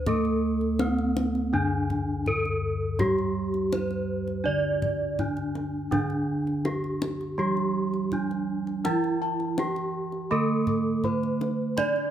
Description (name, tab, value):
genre	Javanese gamelan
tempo	82 BPM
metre	4/4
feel	straight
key	D slendro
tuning	A4 = 438 Hz
part	gamelan-type bronze metallophone	melody	0.0-12.1 s	C4-45c to D5	-29 LUFS	equal	none
part	gamelan-type bronze metallophone	accompaniment	0.0-12.1 s	D3 to D4	-29 LUFS	right 4 dB	none
part	gamelan-type bossed gongs	bass	0.0-12.1 s	D2 to D5	-31 LUFS	left 2 dB	none
part	kendang	percussion	0.1-12.1 s	none	-33 LUFS	left 3 dB	none
part	gamelan-type bossed gongs	arpeggios	8.9-12.1 s	G5-35c to D6	-35 LUFS	left 6 dB	none
room	light reverb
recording	close, detailed microphones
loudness	-24 LUFS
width	side -10 dB against mid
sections	0.0-12.1 A section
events	none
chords	none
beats	| 0.07 0.80 1.53 2.26 | 2.99 3.73 4.46 5.19 | 5.92 6.65 7.38 8.12 | 8.85 9.58 10.31 11.04 | 11.78